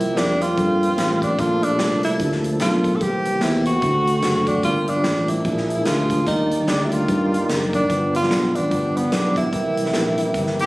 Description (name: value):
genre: uptempo gospel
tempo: 147 BPM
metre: 4/4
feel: swing 60% on 8ths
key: unclear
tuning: A4 = 437 Hz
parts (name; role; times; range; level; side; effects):
- breathy tenor saxophone; melody; 0.0-10.7 s; B3 to A4; -21 LUFS; equal; none
- mellow tine electric piano; accompaniment; 0.0-10.6 s; G2 to D5; -25 LUFS; equal; medium stereo tremolo
- tonewheel organ; sustained chords; 0.0-10.7 s; D3 to D5; -27 LUFS; equal; chorus vibrato, stopped rotary speaker
- fingered electric bass; bass; 0.0-10.7 s; F#1 to G2; -24 LUFS; equal; none
- swinging big-band drum kit; drums; 0.0-10.7 s; hi-hat, kick drum, snare drum; -27 LUFS; equal; none
- warm horn section; melody; 10.6-10.7 s; Bb3 to G4; -17 LUFS; left 1 dB; none
room: light reverb, small room ambience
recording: recorded on a phone in the room, club reverb, compression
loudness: -17 LUFS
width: side -20 dB against mid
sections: 0.0-10.7 A section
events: none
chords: 0.0 C7sus4; 1.4 Bbmaj7; 3.0 C7; 3.8 D7; 4.6 Gm7; 5.5 Bb7; 6.3 Ebmaj7; 7.9 G7; 9.5 C7